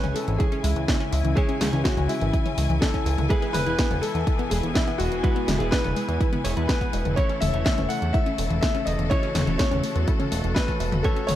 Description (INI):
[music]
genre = italo disco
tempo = 124 BPM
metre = 4/4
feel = straight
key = unclear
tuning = A4 = 437 Hz
[part]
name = clear grand piano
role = melody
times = 0.0-11.4 s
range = E4 to F#5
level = -29 LUFS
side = left 2 dB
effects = digital delay
[part]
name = rich studio string section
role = sustained chords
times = 0.0-11.4 s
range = B2 to G#5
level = -31 LUFS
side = left 2 dB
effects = none
[part]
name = wide unison pluck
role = arpeggios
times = 0.0-11.4 s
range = E3 to F#4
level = -32 LUFS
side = left 1 dB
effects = cassette tape, digital delay
[part]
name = direct-recorded clean electric guitar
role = stabs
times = 0.0-11.4 s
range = C#3 to C#5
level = -32 LUFS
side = right 3 dB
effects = vintage 12-bit sampler grit
[part]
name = chorused synth bass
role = bass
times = 0.0-11.4 s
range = E1 to E2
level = -26 LUFS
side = equal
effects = none
[part]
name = house drum kit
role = drums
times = 0.0-11.4 s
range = hi-hat, snare drum, toms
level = -29 LUFS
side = left 1 dB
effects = none
[part]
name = electronic kick drum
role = drums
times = 0.4-11.1 s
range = none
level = -24 LUFS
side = equal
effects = none
[sound]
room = light reverb, digital ambience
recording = dark, warm production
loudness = -21 LUFS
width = side -12 dB against mid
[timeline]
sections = 0.0-11.4 A section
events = none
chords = 0.0 C#m; 3.3 E; 7.2 A/E